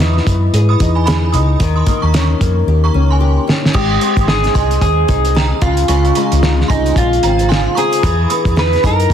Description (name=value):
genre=indie pop, bedroom pop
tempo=112 BPM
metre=4/4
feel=swing 60% on 16ths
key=Ab major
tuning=A4 = 441 Hz
part: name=synth chime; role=second line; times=0.0-9.0 s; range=G5 to D#6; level=-22 LUFS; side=right 5 dB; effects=ensemble chorus, tremolo, ping-pong delay
part: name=nylon-string guitar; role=accompaniment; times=0.0-9.1 s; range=Db3 to Ab4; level=-20 LUFS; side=left 7 dB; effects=lush chorus, vibrato effect
part: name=hollow-body short-scale fingered electric bass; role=bass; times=0.0-9.1 s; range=Ab1 to G#2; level=-14 LUFS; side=equal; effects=none
part: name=cloth-damped thuddy drum kit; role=drums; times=0.0-9.1 s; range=crash cymbal, hi-hat, kick drum, snare drum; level=-17 LUFS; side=equal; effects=none
part: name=electric guitar through a small old amp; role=melody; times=3.7-9.1 s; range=Eb4 to B4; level=-16 LUFS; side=right 1 dB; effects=wide subtle chorus, ping-pong delay
room=studio ambience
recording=dense, heavily limited modern master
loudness=-11 LUFS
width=side -9 dB against mid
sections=0.0-3.7 A section; 3.7-9.1 B section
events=drum fill 2.7-3.7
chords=0.0 Emaj7; 1.6 Eb7; 3.7 Abmaj7; 5.6 Dbmaj7; 8.0 Emaj7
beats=0.53 1.06 | 1.60 2.13 2.67 3.21 | 3.74 4.28 4.81 5.35 | 5.88 6.42 6.96 7.49 | 8.03 8.56 9.10